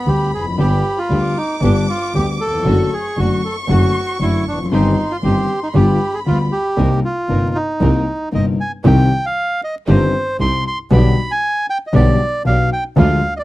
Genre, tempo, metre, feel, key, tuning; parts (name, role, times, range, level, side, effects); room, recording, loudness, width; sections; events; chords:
tango; 116 BPM; 4/4; rubato; C harmonic minor; A4 = 440 Hz
bandoneon; melody; 0.0-13.4 s; D4 to C6; -20 LUFS; right 1 dB
warm chamber violin section; second line; 0.0-6.8 s; B5 to D6; -26 LUFS; left 1 dB
warm concert grand piano; accompaniment; 0.1-13.2 s; G1 to G4; -17 LUFS; left 2 dB
clear double bass; bass; 0.1-13.2 s; F1 to D2; -18 LUFS; right 1 dB
clear symphonic string section; stabs; 0.6-13.2 s; Ab3 to Bb4; -27 LUFS; right 3 dB
light reverb; dry, close 1970s-style studio recording, vinyl crackle; -14 LUFS; side -17 dB against mid
0.0-8.8 A section; 8.8-13.4 A section
0.0 G; 2.7 D/F#; 4.7 Cm/G; 5.7 G7; 6.8 Cm7; 8.8 Cm; 10.9 G/B